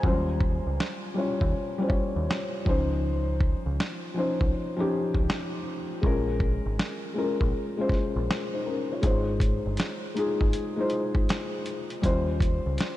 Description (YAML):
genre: lo-fi hip hop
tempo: 80 BPM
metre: 4/4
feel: swing 66% on 16ths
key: Ab major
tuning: A4 = 440 Hz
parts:
  - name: felt-muted upright piano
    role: accompaniment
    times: 0.0-13.0 s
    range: F3 to Ab5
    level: -28 LUFS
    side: left 2 dB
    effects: low-pass filter
  - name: deep dub picked electric bass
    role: bass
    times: 0.0-12.8 s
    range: G1 to Eb2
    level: -29 LUFS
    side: equal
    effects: none
  - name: dusty soul sampler-style drum kit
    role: drums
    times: 0.0-13.0 s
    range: hi-hat, kick drum, snare drum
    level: -28 LUFS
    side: equal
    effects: none
room: light reverb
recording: none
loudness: -25 LUFS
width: side -15 dB against mid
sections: 0.0-13.0 A section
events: break 0.0-9.0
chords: 0.0 Eb13; 2.7 Dbmaj9; 6.0 Bbm7; 9.0 Ab6; 12.0 Eb13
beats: | 0.04 0.79 1.53 2.29 | 3.04 3.79 4.54 5.29 | 6.04 6.79 7.54 8.29 | 9.04 9.79 10.54 11.29 | 12.04 12.79